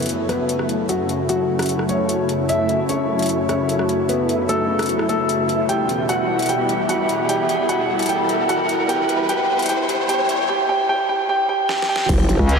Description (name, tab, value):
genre	heavy wobble dubstep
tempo	150 BPM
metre	4/4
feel	half-time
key	F# phrygian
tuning	A4 = 439 Hz
part	dark grand piano	melody	0.0-12.1 s	F#3 to G5	-21 LUFS	equal	ping-pong delay
part	supersaw pad	sustained chords	0.0-12.6 s	E2 to A4	-24 LUFS	equal	analog chorus, sidechain pumping, low-pass filter
part	dubstep drum kit	drums	0.0-12.6 s	crash cymbal, hi-hat, rim click, snare drum	-28 LUFS	left 1 dB	overdrive
part	riser and sub drop	sound effects	2.5-12.6 s	none	-27 LUFS	equal	none
part	warbly tape-like pad	texture	0.0-12.6 s	E4 to B5	-26 LUFS	left 1 dB	chorus, built-in reverb, sidechain pumping
part	growl bass	bass	12.1-12.4 s	F#1	-18 LUFS	equal	chorus, overdrive
part	electronic kick drum	drums	12.1-12.5 s	none	-22 LUFS	equal	overdrive
part	metallic wobble bass	bass	12.4-12.6 s	C#2	-14 LUFS	equal	chorus, overdrive
room	wet huge ambient reverb, RT60 7.8 s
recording	dreamy mix soaked in reverb, high-pass filter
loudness	-17 LUFS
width	side -5 dB against mid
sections	0.0-12.1 A section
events	build-up 0.0-12.1; filter sweep on supersaw synth 0.0-12.1; filter sweep 0.0-12.1; riser 2.5-10.5; drum fill 11.7-12.1; impact 12.1-12.6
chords	0.0 F#m7; 5.7 Em; 12.1 F#m7